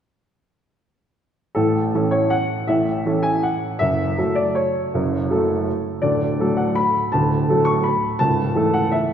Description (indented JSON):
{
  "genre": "classical, piano waltz",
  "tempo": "163 BPM",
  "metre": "3/4",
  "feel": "uneven beats, rubato",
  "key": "A major",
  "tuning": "A4 = 438 Hz",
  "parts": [
    { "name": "clear upright piano", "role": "solo", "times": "1.5-9.1 s", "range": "C#1 to C#6", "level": "-17 LUFS", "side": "equal", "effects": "none" }
  ],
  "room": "wet concert hall reverb, RT60 2.3 s",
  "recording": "recorded in a church or concert hall",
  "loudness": "-18 LUFS",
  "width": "side -8 dB against mid",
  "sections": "1.6-9.1 A section",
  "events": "none",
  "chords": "1.6 A; 3.8 F#m; 6.0 D; 8.2 A/C#"
}